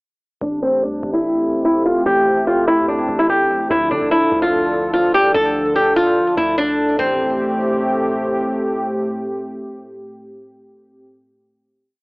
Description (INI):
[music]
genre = hip hop, trap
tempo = 146 BPM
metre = 4/4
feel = half-time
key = A minor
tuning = A4 = 441 Hz
[part]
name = flamenco guitar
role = melody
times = 0.4-8.2 s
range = C4 to A4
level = -16 LUFS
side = equal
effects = low-pass filter, cassette tape, tape echo
[part]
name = warm analog pad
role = sustained chords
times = 0.4-11.0 s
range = A2 to A4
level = -21 LUFS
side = equal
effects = chorus, low-pass filter, cassette tape
[part]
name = warm 808-style bass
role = bass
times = 0.4-8.6 s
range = A1 to D3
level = -34 LUFS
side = equal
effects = tube saturation
[sound]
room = moderate booth ambience, RT60 0.2 s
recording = home recording on cassette, AM radio sound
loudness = -15 LUFS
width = side -40 dB against mid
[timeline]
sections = 0.4-7.0 breakdown; 7.0-10.3 final chord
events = filter sweep 0.4-7.0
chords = 0.4 Am7; 3.7 Dm; 7.0 Am7